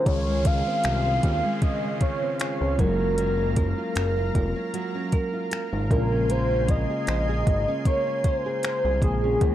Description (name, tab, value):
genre	contemporary R&B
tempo	77 BPM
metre	4/4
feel	swing 54% on 16ths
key	unclear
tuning	A4 = 436 Hz
part	warm velvety synth lead	melody	0.0-9.5 s	Ab4 to F5	-26 LUFS	equal	chorus, tape echo
part	mellow tine electric piano	accompaniment	0.0-9.5 s	Db3 to Bb4	-31 LUFS	left 3 dB	medium stereo tremolo
part	lush unison pad	sustained chords	0.0-9.5 s	Ab4 to C6	-37 LUFS	equal	chorus
part	nylon-string guitar	arpeggios	0.0-9.5 s	Db3 to C5	-32 LUFS	right 5 dB	tape echo
part	fat analog bass	bass	0.1-9.5 s	F1 to Eb2	-26 LUFS	equal	none
part	smooth R&B drum kit	drums	0.1-9.5 s	finger snaps, hi-hat, kick drum	-24 LUFS	equal	none
part	downlifter	sound effects	0.1-6.3 s	none	-42 LUFS	left 1 dB	none
room	little or no reverb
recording	dry, gritty hardware recording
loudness	-22 LUFS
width	side -12 dB against mid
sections	0.1-9.5 A section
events	none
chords	0.1 Dbmaj7; 2.8 Gbmaj7; 5.9 Bbm9